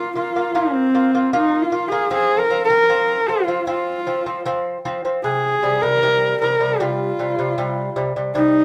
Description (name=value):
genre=mongolian traditional, Mongolian folk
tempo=77 BPM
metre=4/4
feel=straight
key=F minor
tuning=A4 = 441 Hz
part: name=rich horsehead fiddle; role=melody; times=0.0-8.6 s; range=C4 to Bb4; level=-20 LUFS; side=equal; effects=none
part: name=lute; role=arpeggios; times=0.0-8.6 s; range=C3 to F4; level=-24 LUFS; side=equal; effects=none
room=moderate studio reverb, RT60 0.7 s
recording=band playing live in one room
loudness=-19 LUFS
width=mono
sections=0.0-8.6 A section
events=none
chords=0.0 Bb5; 2.1 F5; 5.2 C5